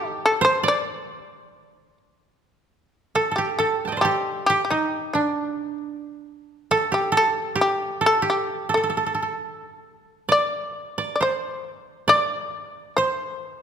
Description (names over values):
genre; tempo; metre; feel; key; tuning
japanese traditional, Japanese chamber music; 68 BPM; 2/4; rubato; D in sen; A4 = 441 Hz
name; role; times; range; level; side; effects
shamisen; melody; 0.0-13.4 s; D4 to D5; -22 LUFS; left 1 dB; none
koto; second line; 0.0-13.6 s; D4 to A5; -25 LUFS; right 3 dB; none
room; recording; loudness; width
moderate concert hall reverb, RT60 2.0 s; minimal, uncompressed stereo recording; -20 LUFS; side -8 dB against mid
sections
0.0-2.7 A section; 2.7-13.6 B section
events
none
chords
none